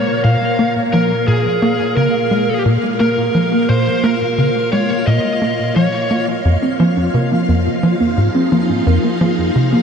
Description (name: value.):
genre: ambient, sequencer-driven space music.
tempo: 87 BPM.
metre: 4/4.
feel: straight.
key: unclear.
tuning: A4 = 441 Hz.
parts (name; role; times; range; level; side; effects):
biting lead guitar; melody; 0.0-6.2 s; Ab4 to F5; -20 LUFS; equal; overdrive, tape echo.
phased string machine; sustained chords; 0.0-9.8 s; Bb2 to F5; -20 LUFS; equal; ensemble chorus, phaser.
tight sequencer bass; riff; 0.0-9.8 s; F2 to Bb3; -16 LUFS; equal; lush chorus, tape echo.
twinkling granular texture; texture; 0.0-9.8 s; F4 to F5; -27 LUFS; left 2 dB; built-in reverb.
warbly dusty pluck; arpeggios; 6.6-9.8 s; Bb3 to Bb4; -18 LUFS; right 1 dB; chorus, auto-pan, tape echo.
room: wet huge ambient reverb, RT60 7.6 s.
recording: dark, warm production.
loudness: -13 LUFS.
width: side -6 dB against mid.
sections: 0.0-9.8 A section.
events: none.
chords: 0.0 Bb5; 6.5 Fm7.